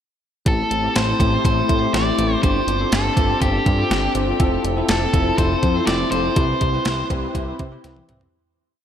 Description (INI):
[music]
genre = 1980s-style pop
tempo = 122 BPM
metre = 4/4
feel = straight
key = A minor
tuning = A4 = 440 Hz
[part]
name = octave-fuzz lead guitar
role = melody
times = 0.5-7.1 s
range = G4 to D5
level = -23 LUFS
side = equal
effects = distortion, ping-pong delay
[part]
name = bell-like tine electric piano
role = accompaniment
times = 0.5-8.4 s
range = A3 to C5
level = -22 LUFS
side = left 2 dB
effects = ensemble chorus
[part]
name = fat analog bass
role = bass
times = 0.5-8.3 s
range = F1 to C3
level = -23 LUFS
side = equal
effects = none
[part]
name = clean 12-bit digital drum machine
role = drums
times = 0.5-8.3 s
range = hi-hat, kick drum, snare drum, toms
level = -22 LUFS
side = equal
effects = overdrive
[sound]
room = wet cathedral reverb, RT60 5.5 s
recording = dreamy mix soaked in reverb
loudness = -17 LUFS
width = side -9 dB against mid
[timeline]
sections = 0.5-8.3 verse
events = fade-out 6.4-8.3; drum fill 7.8-8.3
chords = 0.5 Am7; 2.4 G7sus4; 4.4 Fmaj7; 6.4 Cmaj7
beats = | 0.46 0.96 1.45 1.94 | 2.43 2.92 3.42 3.91 | 4.40 4.89 5.38 5.87 | 6.37 6.86 7.35 7.84